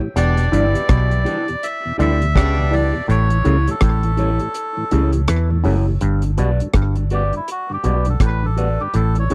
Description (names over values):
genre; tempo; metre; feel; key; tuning
roots reggae; 82 BPM; 4/4; swing 60% on 16ths; unclear; A4 = 440 Hz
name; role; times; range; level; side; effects
mellow tonewheel organ; accompaniment; 0.0-9.3 s; E2 to F#4; -28 LUFS; equal; slow rotary speaker
clear horn section; second line; 0.1-2.9 s; B2 to E4; -31 LUFS; equal; dub echo
melodica; melody; 0.2-9.3 s; E4 to E5; -26 LUFS; equal; dub echo
auto-wah clav; riff; 0.2-9.3 s; E2 to E3; -27 LUFS; equal; none
vintage muted fingered electric bass; bass; 0.2-9.3 s; E1 to E2; -20 LUFS; equal; none
deep reggae drum kit; drums; 0.2-9.3 s; hi-hat, kick drum, rim click; -21 LUFS; equal; none
mellow electric guitar; accompaniment; 0.5-9.3 s; E4 to D5; -28 LUFS; equal; dub echo
room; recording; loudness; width
small room ambience; dry, close 1970s-style studio recording; -18 LUFS; mono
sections
0.0-6.0 A section; 6.0-9.3 B section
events
kick muted 4.5-6.0; melodica solo 6.0-9.3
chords
0.2 Em7; 3.1 A7; 6.0 Gmaj7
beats
| 0.15 0.89 1.62 2.35 | 3.08 3.81 4.55 5.28 | 6.01 6.74 7.47 8.21 | 8.94